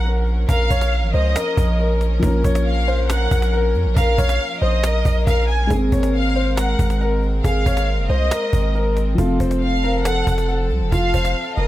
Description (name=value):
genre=hip hop, trap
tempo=138 BPM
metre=4/4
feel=half-time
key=Bb minor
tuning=A4 = 440 Hz
part: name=dark concert grand piano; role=melody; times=0.0-11.7 s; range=F4 to Db5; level=-25 LUFS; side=left 2 dB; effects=tape echo
part: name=dark symphonic violin section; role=second line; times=0.0-11.7 s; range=Eb5 to Ab5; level=-25 LUFS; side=equal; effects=tape echo
part: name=dark concert grand piano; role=accompaniment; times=0.0-11.7 s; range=F3 to Db4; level=-27 LUFS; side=left 1 dB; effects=none
part: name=warm studio string section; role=sustained chords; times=0.0-11.7 s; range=F3 to Bb4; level=-28 LUFS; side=left 2 dB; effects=none
part: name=long sustained 808-style bass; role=bass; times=0.0-11.7 s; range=F1 to F2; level=-19 LUFS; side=equal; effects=none
part: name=cajon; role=drums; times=0.1-11.6 s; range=none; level=-24 LUFS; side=equal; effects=none
room=little or no reverb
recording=none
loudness=-16 LUFS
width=side -14 dB against mid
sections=0.0-11.7 A section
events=none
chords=0.0 Bbm; 5.7 Abadd9; 9.2 F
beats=0.05 | 0.49 0.92 1.36 1.79 | 2.23 2.66 3.10 3.53 | 3.96 4.40 4.83 5.27 | 5.70 6.14 6.57 7.01 | 7.44 7.88 8.31 8.75 | 9.18 9.62 10.05 10.49 | 10.92 11.36